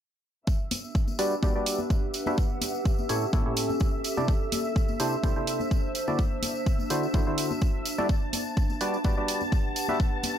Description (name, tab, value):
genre	piano house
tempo	126 BPM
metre	4/4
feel	swing 54% on 16ths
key	G major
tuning	A4 = 440 Hz
part	rich studio string section	sustained chords	0.5-10.4 s	E5 to A6	-38 LUFS	left 1 dB	sidechain pumping, low-pass filter
part	electronic kick drum	drums	0.5-10.1 s	none	-26 LUFS	equal	none
part	tambourine and congas	percussion	0.5-10.3 s	none	-36 LUFS	left 5 dB	none
part	warbly tape-like pad	texture	1.1-10.4 s	C#4 to F#5	-33 LUFS	right 1 dB	chorus, built-in reverb, sidechain pumping
part	electronic hi-hat	drums	0.7-10.3 s	none	-32 LUFS	right 6 dB	none
part	percussive organ stab	riff	1.2-10.0 s	A2 to E5	-30 LUFS	equal	lush chorus, cassette tape, sidechain pumping, digital delay
room	little or no reverb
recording	none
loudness	-24 LUFS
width	side -10 dB against mid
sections	0.5-10.4 A section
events	filter sweep on synth stab 0.5-10.4; filter sweep on string section 0.5-10.4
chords	0.5 Gmaj7; 2.4 A7; 4.0 C69; 6.0 D9; 8.1 Gmaj7